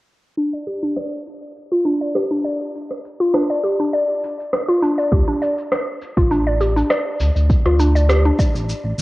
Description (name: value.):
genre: organic downtempo.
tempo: 101 BPM.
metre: 4/4.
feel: swing 54% on 16ths.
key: D minor.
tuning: A4 = 440 Hz.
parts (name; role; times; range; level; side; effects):
mallet-like synth pluck; arpeggios; 0.4-8.5 s; D4 to D5; -19 LUFS; equal; chorus, cassette tape, analog delay.
electronic shaker and rim click; drums; 0.4-9.0 s; none; -24 LUFS; equal; overdrive, low-pass filter on perc, low-pass filter on snare, low-pass filter on room.
smooth gliding synth bass; bass; 5.1-9.0 s; A1 to G2; -17 LUFS; equal; transformer saturation.
electronic kick drum; drums; 5.1-8.5 s; none; -17 LUFS; equal; overdrive.
room: moderate spring reverb, RT60 2.7 s.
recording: home recording on cassette, low-pass filter.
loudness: -16 LUFS.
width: side -19 dB against mid.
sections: 0.4-9.0 A section.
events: filter sweep on drum 0.4-9.0; filter sweep on synth pluck 0.4-9.0; filter sweep 0.4-9.0.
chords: none.